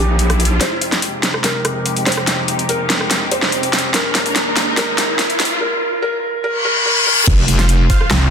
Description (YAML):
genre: heavy wobble dubstep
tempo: 144 BPM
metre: 4/4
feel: half-time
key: F minor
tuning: A4 = 440 Hz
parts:
  - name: felt-muted upright piano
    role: melody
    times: 0.0-7.3 s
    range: G4 to C5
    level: -22 LUFS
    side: right 1 dB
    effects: tape echo
  - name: rich studio string section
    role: sustained chords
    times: 0.0-8.3 s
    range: Eb2 to Bb4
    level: -24 LUFS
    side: left 1 dB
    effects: sidechain pumping, low-pass filter
  - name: wobble bass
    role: bass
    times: 0.0-0.6, 7.3-7.9 s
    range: F1 to Bb1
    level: -14 LUFS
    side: equal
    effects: chorus, overdrive
  - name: riser, reverse cymbal and impact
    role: sound effects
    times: 0.0-8.3 s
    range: none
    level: -20 LUFS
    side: left 1 dB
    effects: none
  - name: dubstep drum kit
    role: drums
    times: 0.2-8.2 s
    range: crash cymbal, hi-hat, rim click, snare drum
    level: -17 LUFS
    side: equal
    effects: high-pass filter on hats, small room ambience, high-pass filter on snare, high-pass filter on cymbals
  - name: electronic kick drum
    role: drums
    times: 7.3-8.0 s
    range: none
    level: -14 LUFS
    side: equal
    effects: small room ambience
  - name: supersaw stab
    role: stabs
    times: 7.6-8.3 s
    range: F4 to F5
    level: -23 LUFS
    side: right 2 dB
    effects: tape echo
  - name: snarling distorted saw bass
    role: bass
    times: 8.1-8.3 s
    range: C2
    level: -13 LUFS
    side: equal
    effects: overdrive
room: moderate lush hall reverb, RT60 2.0 s, digital ambience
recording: dense, heavily limited modern master, high-pass filter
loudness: -13 LUFS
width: side -6 dB against mid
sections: 0.6-7.3 A section; 7.3-8.3 B section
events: riser 0.0-0.6, 0.6-5.6; build-up 0.6-7.3; drum fill 0.6-5.6; filter sweep on string section 0.6-7.3; reverse cymbal 6.5-7.3; drop 7.3-8.3; impact 7.3-8.3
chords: 0.0 Bbm; 0.6 Fm7; 3.9 Ebsus4; 7.3 F5